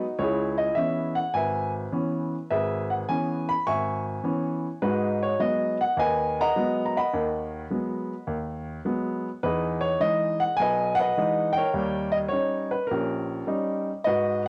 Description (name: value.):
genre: solo jazz.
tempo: 104 BPM.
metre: 4/4.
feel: swing 69% on 8ths.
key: G# minor.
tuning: A4 = 438 Hz.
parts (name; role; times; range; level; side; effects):
warm baby grand piano; solo; 0.0-14.5 s; G#1 to C#6; -26 LUFS; equal; cassette tape.
room: moderate spring reverb, RT60 1.7 s, studio reverb.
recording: home recording on cassette.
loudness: -26 LUFS.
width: mono.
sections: 0.0-14.5 A section.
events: none.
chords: 0.2 C#m7; 4.8 G#m7; 9.4 Emaj7; 11.7 D#7.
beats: | 0.18 0.76 1.34 1.92 | 2.50 3.08 3.66 4.24 | 4.81 5.39 5.97 6.55 | 7.13 7.70 8.28 8.86 | 9.44 10.02 10.59 11.17 | 11.75 12.32 12.90 13.48 | 14.06.